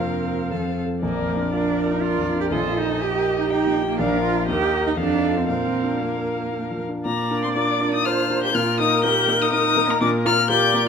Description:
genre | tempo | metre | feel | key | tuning
quick classical-period movement for piano quartet | 121 BPM | 3/4 | rubato | Bb major | A4 = 440 Hz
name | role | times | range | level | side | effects
rich violin | melody | 0.0-10.9 s | D5 to G6 | -24 LUFS | left 7 dB | none
warm cello | second line | 0.0-10.9 s | Bb3 to G4 | -25 LUFS | right 6 dB | none
rich viola | accompaniment | 0.0-10.9 s | G4 to D5 | -27 LUFS | right 3 dB | none
warm concert grand piano | accompaniment | 0.0-10.9 s | Bb1 to Bb4 | -24 LUFS | left 2 dB | none
room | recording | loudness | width
moderate recital hall reverb, RT60 1.7 s | minimal, uncompressed stereo recording | -19 LUFS | side -6 dB against mid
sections
0.0-7.1 A section; 7.1-10.9 A section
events
none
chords
0.0 Fsus4; 0.5 F; 1.0 Bb; 2.5 Eb/Bb; 4.0 Bb; 4.5 Eb; 5.0 F7; 5.5 Bb; 8.5 Eb5/Bb; 10.0 Bb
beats
0.00 0.51 | 1.02 1.53 2.02 | 2.52 3.02 3.51 | 3.99 4.49 4.98 | 5.49 6.01 6.53 | 7.05 7.55 8.05 | 8.55 9.04 9.53 | 10.01 10.50

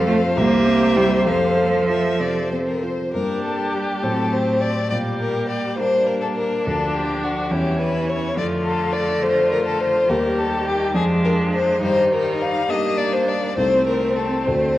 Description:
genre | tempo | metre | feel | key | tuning
quick classical-period movement for piano quintet | 69 BPM (dotted quarters) | 6/8 | rubato | F major, G minor from 3.1 s | A4 = 440 Hz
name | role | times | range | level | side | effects
rich violin | melody | 0.0-14.8 s | F#4 to F5 | -22 LUFS | left 3 dB | none
rich cello | second line | 0.0-14.8 s | D3 to Bb3 | -26 LUFS | right 3 dB | none
rich violin | second line | 0.0-14.8 s | C4 to C5 | -26 LUFS | left 1 dB | none
dark grand piano | accompaniment | 0.0-14.8 s | C2 to C#5 | -24 LUFS | equal | none
rich viola | accompaniment | 0.0-14.8 s | G3 to A4 | -26 LUFS | right 1 dB | none
room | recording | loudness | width
wet concert hall reverb, RT60 2.4 s | worn, warbling old tape, cassette tape, warbly pitch drift | -18 LUFS | side -14 dB against mid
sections
0.0-3.1 A section; 3.1-14.8 B section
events
none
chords
0.4 C7; 1.3 F; 3.1 Gm; 4.0 F#dim/A; 4.9 Gm/Bb; 6.7 Dm; 7.5 C#dim/E; 8.4 Dm/F; 10.1 Eb; 11.0 Ddim/F; 11.8 Eb/G; 13.6 Adim/C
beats
0.38 | 1.28 2.21 | 3.14 4.03 | 4.91 5.79 | 6.65 7.51 | 8.37 9.22 | 10.09 10.95 | 11.82 12.69 | 13.57 14.46

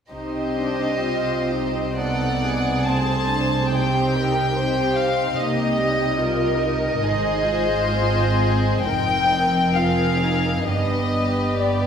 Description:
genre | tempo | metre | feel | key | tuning
classical, slow romantic movement for string orchestra | 62-74 BPM | 4/4 | rubato | C minor | A4 = 440 Hz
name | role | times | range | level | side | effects
warm symphonic violin section | melody | 0.1-11.9 s | C5 to A5 | -24 LUFS | left 3 dB | none
warm studio violin section | second line | 0.1-11.9 s | G4 to Eb5 | -25 LUFS | right 1 dB | none
warm chamber viola section | accompaniment | 0.1-11.9 s | G3 to F4 | -26 LUFS | left 1 dB | none
dark chamber cello section | bass | 0.1-11.9 s | F2 to C3 | -27 LUFS | right 2 dB | none
dark symphonic double bass section | bass | 0.1-11.9 s | F1 to C2 | -27 LUFS | right 2 dB | none
room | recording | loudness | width
wet scoring stage reverb, RT60 1.7 s | heard from further back in the room | -18 LUFS | side -7 dB against mid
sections
0.1-11.9 A section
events
none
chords
0.1 Cm; 2.0 Cdim7; 3.7 Cm; 5.4 Eb/C; 7.0 Ab; 8.8 Fm7; 10.7 G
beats
| 0.11 1.03 1.98 2.85 | 3.72 4.57 5.38 6.21 | 7.04 7.91 8.85 9.74 | 10.66 11.58

